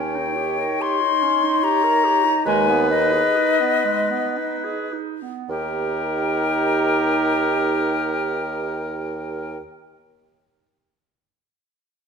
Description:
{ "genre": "classical, slow romantic movement for wind quintet", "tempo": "51-75 BPM", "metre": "3/4", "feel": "rubato", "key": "Eb major", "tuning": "A4 = 443 Hz", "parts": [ { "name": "hollow concert flute", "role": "melody", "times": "0.0-9.6 s", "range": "Eb5 to C6", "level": "-22 LUFS", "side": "left 6 dB", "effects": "none" }, { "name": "warm oboe", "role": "second line", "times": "0.0-9.6 s", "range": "Bb4 to Db5", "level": "-26 LUFS", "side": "left 3 dB", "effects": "none" }, { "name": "clear French horn", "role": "accompaniment", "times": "0.0-9.6 s", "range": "Eb4", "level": "-28 LUFS", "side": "right 3 dB", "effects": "none" }, { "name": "clear clarinet", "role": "accompaniment", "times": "0.0-9.6 s", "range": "Ab3 to Bb4", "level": "-26 LUFS", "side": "right 11 dB", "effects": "none" }, { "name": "warm bassoon", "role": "bass", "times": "0.0-9.6 s", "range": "Eb2", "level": "-26 LUFS", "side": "right 4 dB", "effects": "none" } ], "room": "moderate recital hall reverb, RT60 1.6 s", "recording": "none", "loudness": "-18 LUFS", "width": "side -6 dB against mid", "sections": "0.0-5.5 A section; 5.5-8.8 B section", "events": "slowing down 0.0-5.5", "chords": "0.0 Eb7; 2.5 Abm/Eb; 5.5 Eb", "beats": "0.81 1.63 | 2.45 3.36 4.37 | 5.50 6.62 7.72" }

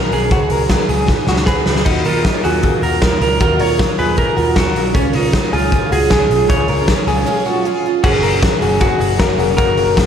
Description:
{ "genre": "jangly indie pop", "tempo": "155 BPM", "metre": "4/4", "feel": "straight", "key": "unclear", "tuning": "A4 = 443 Hz", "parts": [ { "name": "picked twelve-string acoustic guitar", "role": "accompaniment", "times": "0.0-10.1 s", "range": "B2 to A#4", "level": "-22 LUFS", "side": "right 8 dB", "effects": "slapback echo" }, { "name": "direct-recorded clean electric guitar", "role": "arpeggios", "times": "0.0-10.1 s", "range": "F#4 to B4", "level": "-21 LUFS", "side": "left 5 dB", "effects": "tremolo, slapback echo" }, { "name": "vintage muted picked electric bass", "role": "bass", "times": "0.0-10.0 s", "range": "F1 to D#2", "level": "-21 LUFS", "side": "equal", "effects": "none" }, { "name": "electric guitar through a small old amp", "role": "melody", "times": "0.1-10.1 s", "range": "C#4 to C#5", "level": "-19 LUFS", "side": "right 1 dB", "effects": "spring reverb, slapback echo" }, { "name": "raw garage drum kit", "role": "drums", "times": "0.1-10.1 s", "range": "crash cymbal, hi-hat, kick drum, ride cymbal, snare drum", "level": "-16 LUFS", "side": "equal", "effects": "none" }, { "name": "reed electric piano", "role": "accompaniment", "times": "8.0-10.1 s", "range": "Bb3 to Bb4", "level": "-21 LUFS", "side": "left 9 dB", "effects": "slapback echo" } ], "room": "moderate lush hall reverb, RT60 1.9 s, small room reverb", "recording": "big arena sound", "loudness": "-12 LUFS", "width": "side -8 dB against mid", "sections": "0.0-1.9 A section; 1.9-8.0 B section; 8.0-10.1 C section", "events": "drum fill 1.1-1.9; break 7.3-8.0", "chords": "0.3 C#7sus4; 1.9 D#madd9; 5.0 C#; 8.0 Gbadd9", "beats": "| 0.32 0.70 1.09 1.48 | 1.86 2.25 2.63 3.02 | 3.41 3.79 4.18 4.57 | 4.95 5.34 5.72 6.11 | 6.50 6.88 7.27 7.66 | 8.04 8.43 8.82 9.20 | 9.59 9.98" }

